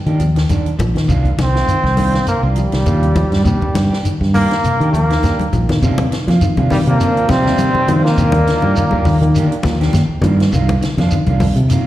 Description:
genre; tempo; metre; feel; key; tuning
afrobeat; 102 BPM; 4/4; swing 55% on 16ths; C minor; A4 = 439 Hz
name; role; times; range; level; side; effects
semi-hollow electric guitar; arpeggios; 0.0-11.9 s; G2 to F3; -23 LUFS; left 3 dB; lush chorus, slapback echo
electric guitar at the edge of break-up; stabs; 0.1-11.9 s; Eb3 to G4; -25 LUFS; right 6 dB; spring reverb, slapback echo
fingered electric bass; bass; 0.1-11.8 s; Bb1 to F3; -15 LUFS; equal; none
compact cocktail drum kit; drums; 0.1-11.8 s; hi-hat, kick drum, snare drum; -22 LUFS; equal; none
shekere; percussion; 0.2-11.9 s; none; -21 LUFS; equal; none
congas; percussion; 0.5-11.9 s; none; -21 LUFS; left 2 dB; slapback echo
bright trombone; melody; 1.4-9.8 s; G3 to C4; -18 LUFS; right 1 dB; slapback echo
bright alto saxophone; second line; 6.7-9.8 s; Eb3 to G3; -27 LUFS; right 2 dB; slapback echo
muted trombone section; second line; 6.7-9.8 s; G2 to C3; -25 LUFS; left 3 dB; slapback echo
room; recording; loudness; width
light reverb; live gig heard through the venue's PA, recital hall reverb; -12 LUFS; side -14 dB against mid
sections
0.0-5.8 A section; 5.8-11.9 B section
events
drum fill 5.4-5.8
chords
0.0 Ebmaj7; 1.1 Cm11; 3.5 Ebmaj7; 5.8 Cm11; 8.2 Ebmaj7; 10.5 Cm11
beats
0.50 | 1.09 1.68 2.27 2.87 | 3.46 4.05 4.64 5.23 | 5.82 6.41 7.00 7.59 | 8.18 8.77 9.35 9.94 | 10.53 11.12 11.70

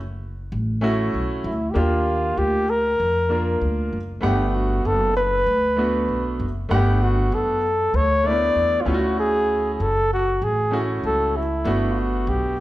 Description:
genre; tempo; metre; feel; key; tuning
hip hop, jazz-hop; 97 BPM; 4/4; swing 58% on 16ths; G lydian; A4 = 440 Hz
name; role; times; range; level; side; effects
upright bass; bass; 0.0-12.6 s; F#1 to F#2; -24 LUFS; equal; none
warm concert grand piano; accompaniment; 0.8-12.5 s; A3 to F#5; -25 LUFS; right 1 dB; none
breathy flugelhorn; melody; 1.5-12.6 s; E4 to D5; -21 LUFS; equal; none
room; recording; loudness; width
moderate recital hall reverb, RT60 1.4 s; recorded in a church or concert hall; -19 LUFS; side -16 dB against mid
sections
0.0-12.6 A section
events
none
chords
0.0 Dmaj9; 1.8 Ebmaj9; 4.2 Gmaj9; 8.9 Dmaj9; 11.7 Gmaj9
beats
0.52 1.14 | 1.75 2.37 2.99 3.61 | 4.23 4.85 5.47 6.08 | 6.70 7.32 7.94 8.56 | 9.18 9.80 10.41 11.03 | 11.65 12.27

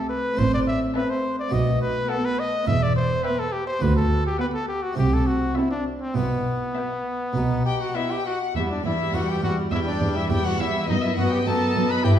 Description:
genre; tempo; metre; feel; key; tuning
classical, baroque-style concerto movement with solo episodes; 103 BPM; 4/4; straight; E minor; A4 = 440 Hz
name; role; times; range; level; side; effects
brilliant trumpet; melody; 0.0-12.2 s; B3 to E5; -26 LUFS; left 1 dB; none
rich chamber violin section; melody; 0.0-12.2 s; B4 to A5; -36 LUFS; left 6 dB; none
rich chamber violin section; second line; 0.0-12.1 s; D5 to B5; -30 LUFS; left 3 dB; none
dark chamber viola section; accompaniment; 0.0-12.2 s; G3 to E4; -28 LUFS; equal; none
harpsichord; accompaniment; 0.0-12.2 s; D2 to A4; -29 LUFS; right 1 dB; none
dark chamber cello section; bass; 0.4-12.1 s; D2 to C3; -26 LUFS; right 2 dB; none
rich chamber double bass section; bass; 0.4-7.8 s; E1 to D2; -26 LUFS; right 1 dB; none
room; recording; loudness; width
wet recital hall reverb, RT60 1.4 s; heard from further back in the room; -21 LUFS; side -10 dB against mid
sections
0.0-8.6 A section; 8.6-12.2 A section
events
none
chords
0.4 Am; 1.5 B5; 2.7 Em; 3.8 Bm/D; 5.0 Am/C; 6.2 Em/B; 7.4 B; 8.6 Em; 10.9 B/F#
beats
0.37 0.94 | 1.52 2.09 2.67 3.24 | 3.82 4.39 4.97 5.56 | 6.16 6.76 7.36 7.96 | 8.55 9.14 9.72 10.30 | 10.88 11.46 12.04

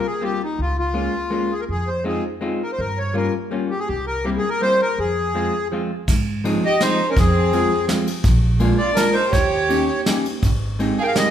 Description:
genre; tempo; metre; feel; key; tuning
musette waltz; 165 BPM; 3/4; straight; F minor, Ab major from 6.1 s; A4 = 440 Hz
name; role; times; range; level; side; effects
accordion; melody; 0.0-11.3 s; Eb4 to G5; -21 LUFS; left 1 dB; none
vintage hollow-body jazz guitar; accompaniment; 0.0-11.3 s; F3 to G4; -24 LUFS; left 1 dB; none
upright bass; bass; 0.6-10.9 s; Ab1 to Ab2; -23 LUFS; right 1 dB; none
soft brush drum kit; drums; 6.1-11.2 s; crash cymbal, kick drum, ride cymbal, snare drum; -22 LUFS; equal; none
warm violin; second line; 6.6-11.3 s; C4 to Bb4; -24 LUFS; right 6 dB; none
room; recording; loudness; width
moderate recital hall reverb, RT60 1.4 s; recorded in a church or concert hall; -18 LUFS; side -10 dB against mid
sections
0.0-6.1 A section; 6.1-11.3 B section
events
none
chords
0.0 C7sus4; 0.6 Db6; 1.7 Fm7; 2.8 Gm7b5; 3.9 C7; 5.0 Fm; 6.1 Ab6; 7.2 Fm; 8.2 Bb7; 9.3 Eb7; 10.4 Abmaj7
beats
0.22 | 0.59 0.95 1.32 | 1.69 2.06 2.43 | 2.79 3.16 3.52 | 3.88 4.25 4.61 | 4.97 5.34 5.71 | 6.08 6.44 6.80 | 7.17 7.53 7.88 | 8.24 8.61 8.97 | 9.33 9.69 10.06 | 10.43 10.79 11.15

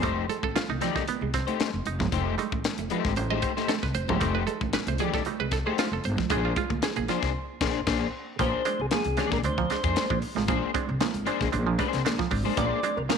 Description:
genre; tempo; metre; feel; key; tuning
funk; 115 BPM; 4/4; straight; unclear; A4 = 440 Hz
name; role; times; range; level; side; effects
electric guitar at the edge of break-up; accompaniment; 0.0-12.8 s; A3 to D5; -31 LUFS; left 12 dB; analog chorus
muted clav; stabs; 0.0-13.2 s; Bb2 to Eb5; -32 LUFS; right 11 dB; none
upright bass; bass; 0.0-13.1 s; F1 to Bb2; -30 LUFS; equal; none
tight funk drum kit; drums; 0.0-13.2 s; crash cymbal, hi-hat, kick drum, snare drum; -31 LUFS; left 4 dB; none
semi-hollow electric guitar; riff; 0.2-13.2 s; F3 to C4; -35 LUFS; right 12 dB; spring reverb
congas; percussion; 0.3-13.2 s; none; -37 LUFS; right 12 dB; none
percussive tonewheel organ; melody; 8.4-13.2 s; Ab4 to D5; -30 LUFS; left 1 dB; slow rotary speaker
room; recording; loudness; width
light reverb, studio ambience; 1960s-style stereo with parts hard left and right; -24 LUFS; side -6 dB against mid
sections
0.0-8.4 A section; 8.4-13.2 B section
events
clav solo 0.0-8.4; band accent 7.4-8.4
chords
0.0 F9; 6.3 Bb9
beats
| 0.03 0.56 1.08 1.60 | 2.12 2.65 3.17 3.69 | 4.22 4.74 5.26 5.78 | 6.31 6.83 7.35 7.87 | 8.40 8.92 9.44 9.96 | 10.49 11.01 11.53 12.05 | 12.57 13.10

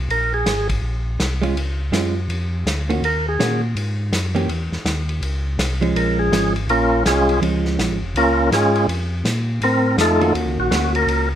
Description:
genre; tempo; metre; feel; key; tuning
soul jazz organ trio; 164 BPM; 4/4; swing 63% on 8ths; Bb minor; A4 = 436 Hz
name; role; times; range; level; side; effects
mellow tonewheel organ; bass; 0.0-11.4 s; F1 to Bb2; -22 LUFS; equal; overdrive, chorus vibrato, slow rotary speaker
percussive tonewheel organ; melody; 0.1-0.7, 3.1-3.6, 6.0-11.3 s; Ab3 to Bb4; -18 LUFS; equal; slow rotary speaker
vintage drum kit; drums; 0.1-11.2 s; hi-hat, kick drum, ride cymbal, snare drum; -25 LUFS; equal; none
vintage hollow-body jazz guitar; accompaniment; 1.4-8.0, 10.2-11.3 s; Eb3 to G4; -22 LUFS; right 2 dB; none
room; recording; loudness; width
moderate large studio reverb, RT60 0.9 s; none; -17 LUFS; side -10 dB against mid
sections
0.0-11.4 A section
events
tonewheel organ solo 0.0-11.4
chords
0.1 Bbm7; 3.0 Ebm7; 4.5 C; 6.0 Bbm7; 8.9 F7; 10.3 Ebm7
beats
| 0.10 0.46 0.83 1.20 | 1.56 1.93 2.30 2.66 | 3.03 3.40 3.76 4.13 | 4.50 4.86 5.23 5.59 | 5.96 6.33 6.69 7.06 | 7.42 7.79 8.15 8.52 | 8.88 9.25 9.61 9.98 | 10.34 10.71 11.07

